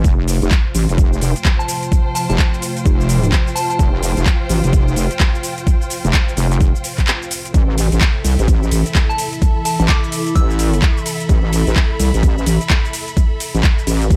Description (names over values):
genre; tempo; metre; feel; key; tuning
bass house; 128 BPM; 4/4; swing 62% on 16ths; A minor; A4 = 439 Hz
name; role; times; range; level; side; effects
sweeping resonant pad; sustained chords; 0.0-14.2 s; C3 to F4; -30 LUFS; equal; chorus, sidechain pumping
wobble bass; bass; 0.0-14.2 s; F1 to C2; -18 LUFS; equal; chorus, tube saturation, sidechain pumping
electronic kick drum; drums; 0.0-14.2 s; none; -16 LUFS; equal; overdrive, small room reverb
garage drum kit; drums; 0.0-14.2 s; handclaps, hi-hat, ride cymbal, shaker; -24 LUFS; equal; overdrive, small room reverb
clear symphonic string section; texture; 0.0-14.2 s; F4 to B5; -30 LUFS; equal; sidechain pumping
soft synth bell; melody; 1.6-3.8, 9.1-11.0 s; A5 to E6; -26 LUFS; equal; chorus, phaser, vintage 12-bit sampler grit, digital delay
room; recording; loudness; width
digital ambience; none; -16 LUFS; mono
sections
0.0-14.2 A section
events
break 7.1-7.5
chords
0.0 F; 7.5 Am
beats
| 0.04 0.51 0.98 1.45 | 1.92 2.39 2.85 3.32 | 3.79 4.26 4.73 5.20 | 5.67 6.14 6.61 7.07 | 7.54 8.01 8.48 8.95 | 9.42 9.89 10.36 10.82 | 11.29 11.76 12.23 12.70 | 13.17 13.64 14.11